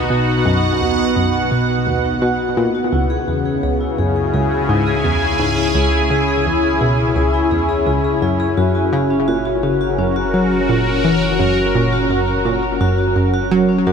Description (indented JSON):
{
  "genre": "ambient, sequencer-driven space music",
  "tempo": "85 BPM",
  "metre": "4/4",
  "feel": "straight",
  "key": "C# dorian",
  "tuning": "A4 = 440 Hz",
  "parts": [
    { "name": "sweeping resonant pad", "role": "sustained chords", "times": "0.0-13.9 s", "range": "B2 to G#5", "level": "-18 LUFS", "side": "right 1 dB", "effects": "chorus" },
    { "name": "vibraphone with medium mallets", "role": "arpeggios", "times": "0.0-13.9 s", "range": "C#4 to C#5", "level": "-23 LUFS", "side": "moving between left 8 dB and left 1 dB", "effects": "auto-pan, ping-pong delay" },
    { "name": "analog pluck", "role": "riff", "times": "0.0-13.9 s", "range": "C#2 to F#3", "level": "-18 LUFS", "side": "equal", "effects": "chorus, ping-pong delay" },
    { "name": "warm sub bass", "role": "bass", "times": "0.0-13.9 s", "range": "F#1 to C#2", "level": "-28 LUFS", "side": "equal", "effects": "none" }
  ],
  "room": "moderate huge ambient reverb, RT60 8.1 s",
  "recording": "none",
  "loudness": "-14 LUFS",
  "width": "side -6 dB against mid",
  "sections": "0.0-13.9 A section",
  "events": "fade-in on vibraphone 0.0-13.9; fade-in on sub bass 0.0-13.9; filter sweep on synth arpeggio sound 0.0-13.9",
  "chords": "0.0 B; 2.9 C#m; 8.6 F#",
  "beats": "| 0.10 0.81 1.51 2.22 | 2.93 3.63 4.34 5.04 | 5.75 6.46 7.16 7.87 | 8.57 9.28 9.98 10.69 | 11.40 12.10 12.81 13.51"
}